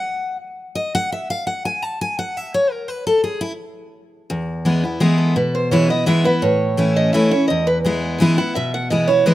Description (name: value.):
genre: bluegrass.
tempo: 169 BPM.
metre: 3/4.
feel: straight.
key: E major.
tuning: A4 = 441 Hz.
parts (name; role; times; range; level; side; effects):
picked steel-string acoustic guitar; accompaniment; 0.0-9.3 s; E2 to A5; -18 LUFS; left 1 dB; none.
picked steel-string acoustic guitar; melody; 5.0-9.3 s; G#4 to G#5; -19 LUFS; right 3 dB; none.
room: light reverb, small room reverb.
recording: rough home demo mix.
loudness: -16 LUFS.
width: side -14 dB against mid.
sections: 0.0-4.3 A section; 4.3-9.3 A section.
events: steel-string acoustic guitar solo 0.0-4.3, 4.3-9.3.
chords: 0.0 N.C.; 4.3 E; 6.4 A; 7.5 E.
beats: | 0.05 0.41 0.76 | 1.11 1.47 1.82 | 2.18 2.53 2.88 | 3.24 3.59 3.95 | 4.30 4.66 5.01 | 5.36 5.72 6.07 | 6.43 6.78 7.14 | 7.49 7.84 8.20 | 8.55 8.91 9.26.